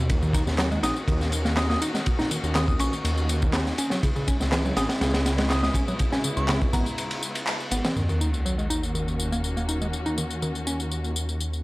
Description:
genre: breakbeat, breaks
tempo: 122 BPM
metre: 4/4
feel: straight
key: Eb phrygian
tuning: A4 = 440 Hz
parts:
  - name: dark chamber string section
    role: sustained chords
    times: 0.0-11.6 s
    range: Db3 to Gb4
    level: -33 LUFS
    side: left 1 dB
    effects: vintage 12-bit sampler grit, sidechain pumping
  - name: picked electric bass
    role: riff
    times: 0.0-10.8 s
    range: Db3 to Eb4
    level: -29 LUFS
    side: equal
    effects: low-pass filter, analog delay
  - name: detuned saw bass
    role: bass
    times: 0.0-11.6 s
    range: Ab1 to Eb2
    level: -27 LUFS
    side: equal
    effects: none
  - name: crunchy breakbeat drum kit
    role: drums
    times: 0.1-8.0 s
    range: kick drum, ride cymbal, snare drum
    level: -26 LUFS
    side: equal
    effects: none
  - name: electronic tambourine and handclaps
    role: drums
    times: 0.1-11.6 s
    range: none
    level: -33 LUFS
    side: left 2 dB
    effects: none
  - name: glassy synth bell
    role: melody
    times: 0.8-7.2 s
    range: Bb5 to Eb6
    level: -34 LUFS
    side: equal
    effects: chorus, phaser, small speaker sound, analog delay
  - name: sub drop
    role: sound effects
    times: 8.0-9.9 s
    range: none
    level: -28 LUFS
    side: equal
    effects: none
room: light reverb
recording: dry, gritty hardware recording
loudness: -22 LUFS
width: side -21 dB against mid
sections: 0.0-8.0 A section; 8.0-11.6 B section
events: break 7.0-8.0; band accent 7.5; impact 8.0-9.9; filter sweep on picked electric bass 8.0-11.6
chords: 0.1 Ebm7; 4.0 Dbm7; 8.0 Ebm7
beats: | 0.09 0.59 1.08 1.57 | 2.06 2.55 3.04 3.54 | 4.03 4.52 5.01 5.50 | 6.00 6.49 6.98 7.47 | 7.96 8.46 8.95 9.44 | 9.93 10.42 10.91 11.41

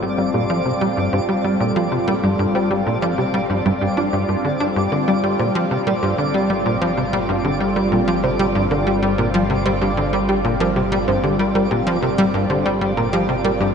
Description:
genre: ambient, sequencer-driven space music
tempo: 95 BPM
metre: 4/4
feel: straight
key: G minor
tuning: A4 = 439 Hz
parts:
  - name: phased analog pad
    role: sustained chords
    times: 0.0-13.7 s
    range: G3 to A4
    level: -23 LUFS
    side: equal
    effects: phaser, chorus, shimmer reverb
  - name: tight sequencer bass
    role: riff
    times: 0.0-13.7 s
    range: G2 to D4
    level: -19 LUFS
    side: equal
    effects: wide subtle chorus, tape echo
  - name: analog drone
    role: bass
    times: 0.0-13.7 s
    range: G1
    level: -31 LUFS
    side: equal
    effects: chorus, tube saturation
  - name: twinkling granular texture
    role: texture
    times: 0.0-13.7 s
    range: D5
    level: -27 LUFS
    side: right 2 dB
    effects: built-in reverb, shimmer reverb
  - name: soft round pluck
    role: arpeggios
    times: 0.2-13.7 s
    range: G3 to D5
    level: -25 LUFS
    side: right 1 dB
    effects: chorus, auto-pan, tape echo
room: wet cathedral reverb, RT60 4.8 s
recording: in a vast, echoing space, nothing above 10.8 kHz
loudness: -16 LUFS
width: side -6 dB against mid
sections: 0.0-13.7 A section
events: fade-in on synth drone 0.0-13.7; filter sweep on synth arpeggio sound 0.0-13.7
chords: 0.0 Gm7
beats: 0.34 0.97 1.60 | 2.24 2.87 3.50 4.13 | 4.76 5.39 6.03 6.66 | 7.29 7.92 8.55 9.18 | 9.81 10.45 11.08 11.71 | 12.34 12.97 13.60

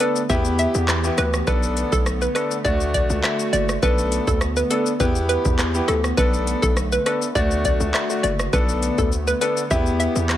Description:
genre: dancehall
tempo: 102 BPM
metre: 4/4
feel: straight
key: B minor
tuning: A4 = 440 Hz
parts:
  - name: hollow square pluck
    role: melody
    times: 0.0-10.1 s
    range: A4 to E5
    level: -24 LUFS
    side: equal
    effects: chorus
  - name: clear concert grand piano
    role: accompaniment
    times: 0.0-10.4 s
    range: A3 to A4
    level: -25 LUFS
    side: left 2 dB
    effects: none
  - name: hollow soft pad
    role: sustained chords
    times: 0.0-10.4 s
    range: D3 to G4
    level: -29 LUFS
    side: right 1 dB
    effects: chorus, sidechain pumping
  - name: booming analog drum machine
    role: drums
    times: 0.0-10.4 s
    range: handclaps, hi-hat, kick drum, rim click, shaker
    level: -23 LUFS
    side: equal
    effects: none
  - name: hard-hitting 808-style bass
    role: bass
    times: 0.3-10.4 s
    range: F#1 to E2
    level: -24 LUFS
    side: equal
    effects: none
room: light reverb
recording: none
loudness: -18 LUFS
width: side -12 dB against mid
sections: 0.0-10.4 A section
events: none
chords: 0.3 Em; 1.5 Bm7; 2.6 D; 3.8 Bm7; 5.0 Em; 6.2 Bm7; 7.4 D; 8.5 Bm7; 9.7 Em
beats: 0.30 0.89 | 1.47 2.06 2.65 3.24 | 3.83 4.42 5.00 5.59 | 6.18 6.77 7.36 7.94 | 8.53 9.12 9.71 10.30

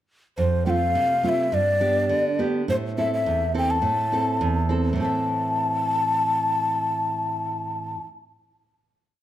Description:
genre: andean folk, Andean ensemble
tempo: 104 BPM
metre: 2/4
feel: straight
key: A minor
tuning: A4 = 440 Hz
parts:
  - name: breathy mellow large quena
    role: melody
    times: 0.4-8.0 s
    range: C5 to A5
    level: -23 LUFS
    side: left 2 dB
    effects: none
  - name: nylon-string guitar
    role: accompaniment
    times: 0.4-8.1 s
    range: E2 to E5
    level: -25 LUFS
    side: right 2 dB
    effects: none
room: moderate recital hall reverb, RT60 1.3 s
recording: close, detailed microphones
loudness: -21 LUFS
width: side -12 dB against mid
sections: 0.4-5.0 A section; 5.0-7.3 final chord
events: none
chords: 0.4 F; 1.5 G; 2.7 Am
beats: | 0.37 0.95 | 1.52 2.10 | 2.67 3.25 | 3.83 4.41 | 4.98 5.56 | 6.14 6.71

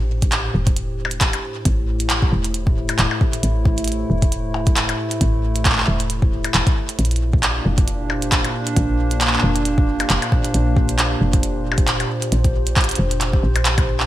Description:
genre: IDM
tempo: 135 BPM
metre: 4/4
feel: swing 56% on 16ths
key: A phrygian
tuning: A4 = 440 Hz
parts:
  - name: hollow soft pad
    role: sustained chords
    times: 0.0-14.1 s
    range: A2 to C5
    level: -24 LUFS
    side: equal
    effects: chorus
  - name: woody FM bass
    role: bass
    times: 0.0-14.0 s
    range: E1 to Bb1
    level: -21 LUFS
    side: equal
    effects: tube saturation
  - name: electronic kick drum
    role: drums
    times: 0.2-13.9 s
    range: none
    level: -18 LUFS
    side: equal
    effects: none
  - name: glitchy drum kit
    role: drums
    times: 0.2-14.1 s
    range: handclaps, hi-hat, percussion blips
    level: -21 LUFS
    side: equal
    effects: gated reverb
room: little or no reverb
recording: bright 1980s-style digital production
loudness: -16 LUFS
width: side -14 dB against mid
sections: 0.0-14.1 A section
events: none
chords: 0.0 Am7; 7.0 Bb6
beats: 0.32 0.77 1.21 | 1.65 2.10 2.54 2.99 | 3.43 3.88 4.32 4.76 | 5.21 5.65 6.10 6.54 | 6.99 7.43 7.88 8.32 | 8.77 9.21 9.65 10.10 | 10.54 10.99 11.43 11.88 | 12.32 12.77 13.21 13.65

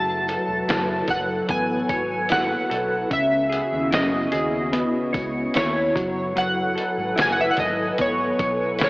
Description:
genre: indie pop, bedroom pop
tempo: 74 BPM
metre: 4/4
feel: straight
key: F# dorian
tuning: A4 = 440 Hz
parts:
  - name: chorused retro synth keys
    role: melody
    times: 0.0-8.9 s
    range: C#5 to A5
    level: -23 LUFS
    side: equal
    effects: analog chorus, diffuse ambient delay
  - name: semi-hollow electric guitar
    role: accompaniment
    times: 0.0-8.9 s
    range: C#3 to C#5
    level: -26 LUFS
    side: left 1 dB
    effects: analog chorus, vibrato effect
  - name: hollow soft pad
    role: sustained chords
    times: 0.0-8.9 s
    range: C#3 to G#5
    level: -28 LUFS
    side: equal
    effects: ensemble chorus
  - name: vintage muted fingered electric bass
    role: bass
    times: 0.0-8.9 s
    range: E1 to F#2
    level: -36 LUFS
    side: equal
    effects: none
  - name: lo-fi sampler-style drum kit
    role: drums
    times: 0.3-8.9 s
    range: hi-hat, kick drum, snare drum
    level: -27 LUFS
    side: equal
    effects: vintage 12-bit sampler grit
  - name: tambourine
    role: percussion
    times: 0.3-8.9 s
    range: none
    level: -46 LUFS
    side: right 1 dB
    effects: none
room: wet lush hall reverb, RT60 3.0 s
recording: dreamy mix soaked in reverb, cassette tape, AM radio sound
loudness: -20 LUFS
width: side -23 dB against mid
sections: 0.0-8.9 A section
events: none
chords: 0.0 F#m11; 3.1 C#m11; 6.0 F#m11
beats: 0.68 1.50 2.31 | 3.12 3.93 4.74 5.55 | 6.36 7.17 7.99 8.80

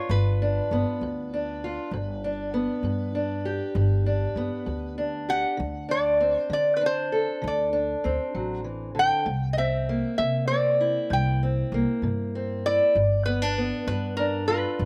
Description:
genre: acoustic country blues, solo or duo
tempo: 65 BPM (dotted quarters)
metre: 12/8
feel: straight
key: G mixolydian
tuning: A4 = 440 Hz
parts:
  - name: lap resonator guitar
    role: melody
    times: 0.0-14.9 s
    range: Bb4 to G5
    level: -27 LUFS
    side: equal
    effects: none
  - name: fingerpicked steel-string acoustic guitar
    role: accompaniment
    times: 0.0-14.9 s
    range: G2 to A4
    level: -31 LUFS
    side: equal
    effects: none
  - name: upright bass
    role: bass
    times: 0.1-14.9 s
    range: G1 to D3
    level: -30 LUFS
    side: equal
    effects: none
room: little or no reverb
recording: recorded outdoors, with no room sound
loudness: -26 LUFS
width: mono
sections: 0.0-14.9 A section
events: none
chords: 0.0 G7; 5.6 D7(no3); 9.3 C7; 12.9 G7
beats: 0.09 1.01 | 1.92 2.84 3.76 4.67 | 5.59 6.51 7.43 8.35 | 9.27 10.18 11.10 12.02 | 12.95 13.87 14.79

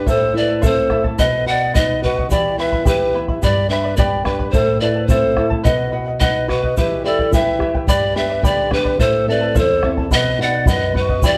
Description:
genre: andean folk, Andean ensemble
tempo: 108 BPM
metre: 2/4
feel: straight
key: unclear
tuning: A4 = 443 Hz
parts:
  - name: breathy pan flute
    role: melody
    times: 0.0-11.4 s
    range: B4 to F#5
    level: -21 LUFS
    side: equal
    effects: none
  - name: polished pan flute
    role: second line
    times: 0.0-11.4 s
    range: F#4 to D5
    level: -26 LUFS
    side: equal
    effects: none
  - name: charango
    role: accompaniment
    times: 0.0-11.4 s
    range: E4 to B5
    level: -27 LUFS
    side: equal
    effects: none
  - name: nylon-string guitar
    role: accompaniment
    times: 0.0-11.4 s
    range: E2 to A4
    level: -25 LUFS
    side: equal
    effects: none
  - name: bombo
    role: percussion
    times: 0.1-11.4 s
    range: none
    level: -22 LUFS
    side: equal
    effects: none
  - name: egg shaker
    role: percussion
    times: 0.1-11.4 s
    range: none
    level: -39 LUFS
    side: equal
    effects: none
room: moderate recital hall reverb, RT60 1.7 s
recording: dark, warm production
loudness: -17 LUFS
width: mono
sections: 0.0-7.9 A section; 7.9-11.4 A section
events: none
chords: 0.1 Am; 1.2 B; 2.3 Em; 3.4 G; 4.5 Am; 5.7 B; 6.8 Em; 7.9 G; 9.0 Am; 10.1 B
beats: | 0.07 0.63 | 1.19 1.74 | 2.30 2.86 | 3.42 3.98 | 4.54 5.09 | 5.65 6.21 | 6.77 7.33 | 7.88 8.44 | 9.00 9.56 | 10.12 10.67 | 11.23

